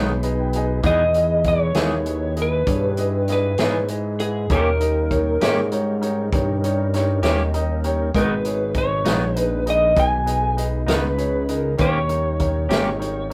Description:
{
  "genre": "slow blues",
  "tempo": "66 BPM (dotted quarters)",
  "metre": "12/8",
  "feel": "straight",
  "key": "G# harmonic minor",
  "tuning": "A4 = 441 Hz",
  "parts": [
    { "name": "bright upright piano", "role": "accompaniment", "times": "0.0-13.3 s", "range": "D#4 to A#5", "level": "-30 LUFS", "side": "equal", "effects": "none" },
    { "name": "clean electric guitar", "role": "accompaniment", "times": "0.0-12.9 s", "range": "G#2 to G#4", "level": "-26 LUFS", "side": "equal", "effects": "harmonic tremolo" },
    { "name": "tonewheel organ", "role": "sustained chords", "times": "0.0-13.3 s", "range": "G3 to B4", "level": "-36 LUFS", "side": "equal", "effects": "none" },
    { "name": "fat analog bass", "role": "bass", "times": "0.0-13.3 s", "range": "G#1 to G#2", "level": "-25 LUFS", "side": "equal", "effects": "none" },
    { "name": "swinging big-band drum kit", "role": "drums", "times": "0.2-13.2 s", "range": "hi-hat, kick drum, snare drum", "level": "-28 LUFS", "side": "equal", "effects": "none" },
    { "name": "electric slide guitar", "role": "melody", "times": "0.9-13.3 s", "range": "G#4 to G#5", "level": "-24 LUFS", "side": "equal", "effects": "none" }
  ],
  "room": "light reverb",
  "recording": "rough rehearsal-room recording",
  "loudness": "-20 LUFS",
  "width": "mono",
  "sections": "0.0-13.3 A section",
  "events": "upright piano fill 0.0-0.8, 7.2-8.1",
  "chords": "0.0 G#m; 0.8 Emaj7; 4.5 D#7; 8.1 G#m; 11.8 D#7",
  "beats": "| 0.84 1.75 2.67 3.58 | 4.49 5.40 6.32 7.23 | 8.14 9.05 9.97 10.88 | 11.79 12.71"
}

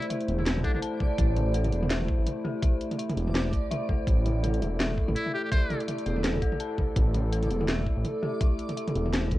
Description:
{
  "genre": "half-time drum and bass",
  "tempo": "166 BPM",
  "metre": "4/4",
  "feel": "swing 56% on 16ths, half-time",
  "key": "unclear",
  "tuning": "A4 = 440 Hz",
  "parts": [
    { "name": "trumpet with metal mute", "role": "melody", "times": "0.0-0.8, 5.2-5.8 s", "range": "D4 to C5", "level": "-36 LUFS", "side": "equal", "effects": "cassette tape, analog delay" },
    { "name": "dark analog pad", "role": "sustained chords", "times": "0.0-9.4 s", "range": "A3 to C5", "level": "-33 LUFS", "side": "equal", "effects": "chorus, sidechain pumping, cassette tape" },
    { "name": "dark detuned synth bell", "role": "arpeggios", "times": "0.0-9.4 s", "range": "G4 to A5", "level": "-38 LUFS", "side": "left 8 dB", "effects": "chorus, cassette tape, analog delay" },
    { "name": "drum and bass drum kit", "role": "drums", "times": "0.0-9.4 s", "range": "hi-hat, snare drum, toms", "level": "-32 LUFS", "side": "equal", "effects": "cassette tape" },
    { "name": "backwards swelling texture", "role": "texture", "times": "0.0-9.4 s", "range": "D5", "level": "-40 LUFS", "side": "right 3 dB", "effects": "built-in reverb, cassette tape" },
    { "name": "dark detuned saw bass", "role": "bass", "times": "0.3-9.4 s", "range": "E1 to C2", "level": "-27 LUFS", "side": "equal", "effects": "none" },
    { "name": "electronic kick drum", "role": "drums", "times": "0.6-9.4 s", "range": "none", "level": "-26 LUFS", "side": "equal", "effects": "cassette tape" }
  ],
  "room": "little or no reverb",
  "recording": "home recording on cassette",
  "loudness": "-25 LUFS",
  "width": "side -16 dB against mid",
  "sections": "0.0-9.4 A section",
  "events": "none",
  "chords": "0.0 Am",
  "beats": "0.10 0.46 0.82 | 1.18 1.54 1.90 2.26 | 2.63 2.99 3.35 3.71 | 4.07 4.43 4.79 5.16 | 5.52 5.88 6.24 6.60 | 6.96 7.33 7.69 8.05 | 8.41 8.77 9.13"
}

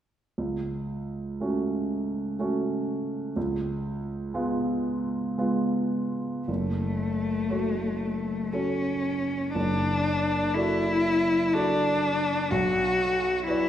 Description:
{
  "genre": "classical, romantic duo for cello and grand piano",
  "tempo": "59 BPM",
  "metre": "3/4",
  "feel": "uneven beats, rubato",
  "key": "F# minor",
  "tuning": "A4 = 441 Hz",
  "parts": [
    { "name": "warm grand piano", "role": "accompaniment", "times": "0.4-13.7 s", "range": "F#1 to D5", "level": "-28 LUFS", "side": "right 1 dB", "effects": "none" },
    { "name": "rich cello", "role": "melody", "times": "6.5-13.7 s", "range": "A3 to F#4", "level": "-25 LUFS", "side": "left 2 dB", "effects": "none" }
  ],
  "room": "wet recital hall reverb, RT60 1.7 s",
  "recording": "heard from further back in the room",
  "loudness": "-25 LUFS",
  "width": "side -10 dB against mid",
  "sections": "0.4-6.5 A section; 6.5-13.7 B section",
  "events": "none",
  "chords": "0.4 F#m/C#; 3.4 C#7; 6.5 F#m; 9.6 D/F#; 12.5 Bm",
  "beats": "| 0.37 1.40 2.39 | 3.36 4.34 5.38 | 6.48 7.50 8.53 | 9.55 10.55 11.54 | 12.51 13.47"
}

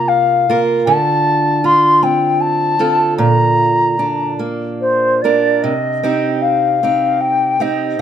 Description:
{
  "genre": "celtic folk, Celtic slow air",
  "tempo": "76 BPM",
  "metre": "3/4",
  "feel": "rubato",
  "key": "C dorian",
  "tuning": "A4 = 440 Hz",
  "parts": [
    { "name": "mellow wooden flute", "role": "melody", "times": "0.0-8.0 s", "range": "C5 to C6", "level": "-14 LUFS", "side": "left 2 dB", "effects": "none" },
    { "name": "fingerpicked steel-string acoustic guitar", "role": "accompaniment", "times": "0.0-8.0 s", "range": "Bb2 to Bb4", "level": "-17 LUFS", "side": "right 3 dB", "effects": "none" }
  ],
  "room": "light reverb",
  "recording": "close, detailed microphones",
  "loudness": "-12 LUFS",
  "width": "side -9 dB against mid",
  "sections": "0.0-5.6 A section; 5.6-8.0 B section",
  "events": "none",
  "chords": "0.0 Fsus4/C; 0.9 Dm7; 3.2 Bb; 5.6 Cm",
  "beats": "0.09 | 0.87 1.64 2.40 | 3.18 3.97 4.80 | 5.63 6.43 7.22 | 8.00"
}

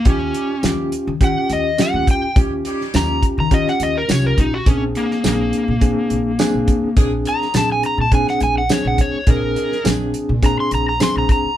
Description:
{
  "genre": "straight-eighth soul blues",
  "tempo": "104 BPM",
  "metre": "4/4",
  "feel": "straight",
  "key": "unclear",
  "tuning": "A4 = 440 Hz",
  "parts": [
    { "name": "overdriven slide guitar", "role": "melody", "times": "0.0-11.6 s", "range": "Bb3 to C6", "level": "-20 LUFS", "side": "left 1 dB", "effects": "none" },
    { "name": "reed electric piano", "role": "accompaniment", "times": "0.1-11.5 s", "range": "C4 to Ab4", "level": "-22 LUFS", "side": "left 1 dB", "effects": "fast tremolo" },
    { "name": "warm horn section", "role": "sustained chords", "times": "0.1-10.1 s", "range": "G3 to Ab4", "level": "-32 LUFS", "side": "right 1 dB", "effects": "none" },
    { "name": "upright bass", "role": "bass", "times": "0.1-11.5 s", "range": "Bb1 to Eb3", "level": "-23 LUFS", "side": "equal", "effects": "none" },
    { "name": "warm soul drum kit", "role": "drums", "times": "0.1-11.4 s", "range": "hi-hat, kick drum, snare drum, tambourine", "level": "-17 LUFS", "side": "equal", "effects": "none" }
  ],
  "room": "moderate small room reverb, RT60 0.5 s",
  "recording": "band playing live in one room",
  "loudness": "-15 LUFS",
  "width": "side -12 dB against mid",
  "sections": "0.0-11.6 A section",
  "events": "electric slide guitar solo 0.0-11.6",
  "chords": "0.1 Eb7; 4.7 Bb7",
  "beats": "| 0.06 0.64 1.21 1.79 | 2.36 2.94 3.51 4.09 | 4.67 5.24 5.82 6.39 | 6.97 7.54 8.12 8.70 | 9.27 9.85 10.42 11.00"
}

